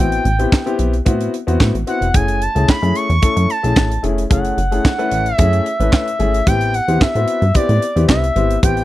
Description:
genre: early-eighties boogie funk.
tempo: 111 BPM.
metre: 4/4.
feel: straight.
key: unclear.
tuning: A4 = 440 Hz.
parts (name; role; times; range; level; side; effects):
expressive portamento lead; melody; 0.0-8.8 s; D5 to C#6; -20 LUFS; equal; chorus, slapback echo.
warm grand piano; accompaniment; 0.0-8.8 s; A3 to B4; -21 LUFS; left 4 dB; none.
plucky analog bass; bass; 0.0-8.8 s; E#1 to A2; -17 LUFS; equal; none.
tight funk drum kit; drums; 0.1-8.8 s; handclaps, hi-hat, kick drum, snare drum; -16 LUFS; right 1 dB; none.
room: studio ambience.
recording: dry, close 1970s-style studio recording.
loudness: -13 LUFS.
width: side -15 dB against mid.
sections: 0.0-8.8 A section.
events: none.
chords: 0.0 Am9; 2.1 F#m9; 6.5 Am9.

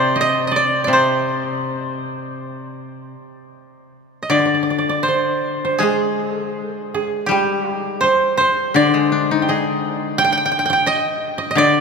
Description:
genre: japanese traditional, Japanese chamber music.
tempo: 75-88 BPM.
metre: 4/4.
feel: rubato.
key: C hirajoshi.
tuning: A4 = 441 Hz.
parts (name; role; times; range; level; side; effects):
koto; melody; 0.0-11.8 s; G4 to G5; -19 LUFS; right 1 dB; none.
koto; second line; 0.0-11.8 s; G4 to G5; -22 LUFS; right 4 dB; none.
koto; accompaniment; 0.0-11.8 s; C3 to Ab4; -22 LUFS; left 6 dB; none.
room: wet cathedral reverb, RT60 5.5 s.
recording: minimal, uncompressed stereo recording.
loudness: -16 LUFS.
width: side -5 dB against mid.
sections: 0.0-4.3 A section; 4.3-11.8 B section.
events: none.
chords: none.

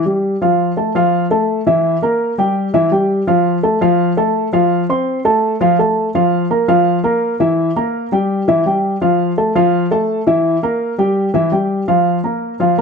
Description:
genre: latin.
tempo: 167 BPM.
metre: 4/4.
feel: straight.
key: F major.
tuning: A4 = 440 Hz.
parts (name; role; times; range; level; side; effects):
dark upright piano; solo; 0.0-12.8 s; E3 to C6; -13 LUFS; equal; none.
room: moderate studio reverb, RT60 0.7 s.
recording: dark, warm production.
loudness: -13 LUFS.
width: side -5 dB against mid.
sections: 0.4-11.9 A section.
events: none.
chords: 0.4 F; 1.8 Edim; 2.6 Em; 3.3 F; 6.1 Bb5; 7.6 Edim; 8.3 Em; 9.0 Fmaj7; 10.4 Edim; 11.9 Fsus4.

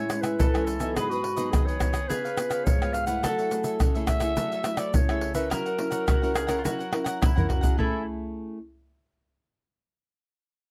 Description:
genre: samba and choro.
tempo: 106 BPM.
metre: 4/4.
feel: straight.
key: A major.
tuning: A4 = 440 Hz.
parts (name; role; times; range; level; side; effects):
growling clarinet; melody; 0.0-8.1 s; F#4 to F#5; -33 LUFS; equal; none.
mandolin; second line; 0.0-8.1 s; E4 to B4; -36 LUFS; equal; slapback echo.
cavaquinho; accompaniment; 0.0-8.0 s; E4 to G#5; -39 LUFS; equal; none.
nylon-string guitar; accompaniment; 0.0-8.6 s; G#2 to Bb4; -34 LUFS; equal; none.
tube shaker, pandeiro, tamborim and surdo; percussion; 0.1-7.9 s; none; -28 LUFS; equal; none.
room: light reverb.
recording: dry, close 1970s-style studio recording.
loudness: -26 LUFS.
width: mono.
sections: 0.0-7.8 A section; 7.8-10.1 B section.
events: drum fill 7.2-7.8.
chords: 0.0 Amaj7; 1.0 G#m7; 2.1 C#7; 3.2 F#m9; 5.5 F#7; 7.8 Amaj7.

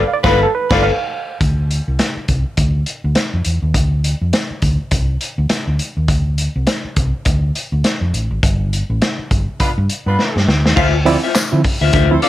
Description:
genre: funk.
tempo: 103 BPM.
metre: 4/4.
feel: swing 60% on 16ths.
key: D dorian.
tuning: A4 = 439 Hz.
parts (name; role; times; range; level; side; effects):
electric guitar at the edge of break-up; accompaniment; 0.0-0.9, 10.8-12.3 s; F4 to F5; -18 LUFS; left 8 dB; plate reverb.
barky reed electric piano; stabs; 0.0-1.4, 10.8-12.3 s; D3 to F5; -18 LUFS; right 6 dB; fast tremolo, plate reverb.
hollow-body short-scale fingered electric bass; bass; 0.0-12.2 s; G1 to D3; -16 LUFS; equal; none.
warm horn section; second line; 0.2-0.8, 9.6-12.3 s; B3 to F5; -21 LUFS; equal; slapback echo, plate reverb.
vintage drum kit; drums; 0.2-12.3 s; crash cymbal, handclaps, hi-hat, kick drum, snare drum; -18 LUFS; equal; none.
tambourine; percussion; 11.4-11.5 s; none; -25 LUFS; left 5 dB; none.
room: little or no reverb.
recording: none.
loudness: -14 LUFS.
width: side -14 dB against mid.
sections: 0.0-1.4 A section; 1.4-10.8 B section; 10.8-12.3 C section.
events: band accent 0.0-1.4, 8.4-10.8; reed electric piano solo 0.0-1.4; drum fill 10.2-10.8.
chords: 0.0 G9; 1.4 D7(no3); 8.4 N.C.; 10.8 Dm9.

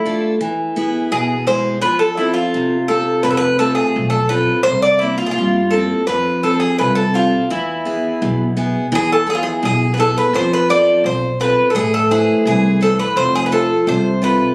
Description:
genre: greek folk, Greek bouzouki band.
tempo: 85 BPM.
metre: 2/4.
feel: straight.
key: unclear.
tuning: A4 = 439 Hz.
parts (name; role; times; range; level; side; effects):
Greek bouzouki; melody; 0.0-14.5 s; E4 to D5; -19 LUFS; equal; plate reverb.
picked steel-string acoustic guitar; accompaniment; 0.0-14.5 s; B2 to E5; -21 LUFS; equal; none.
upright bass; bass; 3.2-14.4 s; F1 to G2; -24 LUFS; equal; none.
room: moderate small room reverb, RT60 0.5 s.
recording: recorded on a phone in the room, studio reverb, compression.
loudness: -16 LUFS.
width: mono.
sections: 0.0-8.9 A section; 8.9-14.5 B section.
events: none.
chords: 0.4 E; 1.8 F; 4.7 C7; 6.1 F; 7.5 E; 10.3 F; 11.7 Amadd9; 13.2 F.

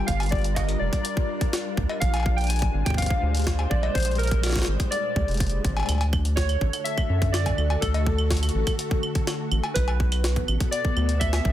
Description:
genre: IDM.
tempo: 124 BPM.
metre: 4/4.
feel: straight.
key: unclear.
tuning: A4 = 440 Hz.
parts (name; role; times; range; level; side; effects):
warbly lo-fi synth keys; melody; 0.0-11.5 s; A4 to Ab5; -30 LUFS; equal; chorus, vintage 12-bit sampler grit, digital delay.
soft string machine; sustained chords; 0.0-11.5 s; Bb2 to C5; -32 LUFS; equal; phaser, ensemble chorus.
round analog bass; bass; 0.0-11.5 s; F1 to F#2; -24 LUFS; equal; none.
electronic kick drum; drums; 0.1-11.5 s; none; -26 LUFS; equal; studio ambience.
jungle sampler-style drum kit; drums; 0.1-11.4 s; claves, cowbell, hi-hat, snare drum; -30 LUFS; left 1 dB; studio ambience.
room: light reverb, digital ambience.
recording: dense, heavily limited modern master.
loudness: -22 LUFS.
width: side -12 dB against mid.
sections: 0.0-11.5 A section.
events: none.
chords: 0.0 Gm7; 2.0 Bb13; 5.9 D; 9.8 Bm7.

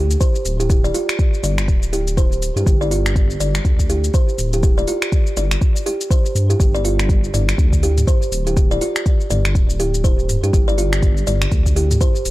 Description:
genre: afro house.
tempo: 122 BPM.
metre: 4/4.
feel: swing 59% on 16ths.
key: unclear.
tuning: A4 = 440 Hz.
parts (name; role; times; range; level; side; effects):
kalimba; arpeggios; 0.0-12.1 s; F4 to D5; -22 LUFS; right 1 dB; sidechain pumping, low-pass filter, analog delay.
dark detuned saw bass; bass; 0.0-12.3 s; D1 to G2; -19 LUFS; equal; transformer saturation, sidechain pumping.
afro-pop drum kit; drums; 0.1-12.3 s; finger snaps, hi-hat, shaker, toms; -24 LUFS; equal; none.
electronic kick drum; drums; 0.2-12.1 s; none; -16 LUFS; equal; none.
room: little or no reverb.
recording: dry, gritty hardware recording.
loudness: -15 LUFS.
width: side -17 dB against mid.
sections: 0.0-12.3 A section.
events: none.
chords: 0.0 G5.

